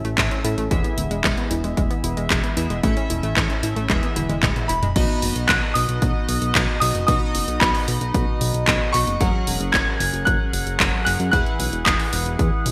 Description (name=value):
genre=italo disco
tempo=113 BPM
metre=4/4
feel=straight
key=B major from 5.0 s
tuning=A4 = 435 Hz
part: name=analog pluck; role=arpeggios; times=0.0-4.9 s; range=G#3 to E4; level=-31 LUFS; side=equal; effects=chorus, digital delay
part: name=chorused polysynth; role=stabs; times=0.0-12.7 s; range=A2 to F#5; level=-29 LUFS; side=equal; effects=none
part: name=fat analog bass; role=bass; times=0.0-12.7 s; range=D1 to A2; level=-27 LUFS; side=equal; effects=none
part: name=house drum kit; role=drums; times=0.0-12.7 s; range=crash cymbal, handclaps, hi-hat, toms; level=-26 LUFS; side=equal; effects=gated reverb
part: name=electronic kick drum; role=drums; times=0.2-12.5 s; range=none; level=-26 LUFS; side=equal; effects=none
part: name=bright grand piano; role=melody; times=4.7-12.7 s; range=B5 to G#6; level=-27 LUFS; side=equal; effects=delay
room=moderate plate reverb, RT60 2.1 s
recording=bright 1980s-style digital production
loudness=-21 LUFS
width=mono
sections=0.0-5.0 A section; 5.0-12.7 B section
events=filter sweep on analog polysynth 0.0-5.0; drum fill 4.2-5.0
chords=0.0 A; 0.7 E; 2.8 A; 3.9 E; 5.0 B; 9.2 F#add9; 11.3 Eadd9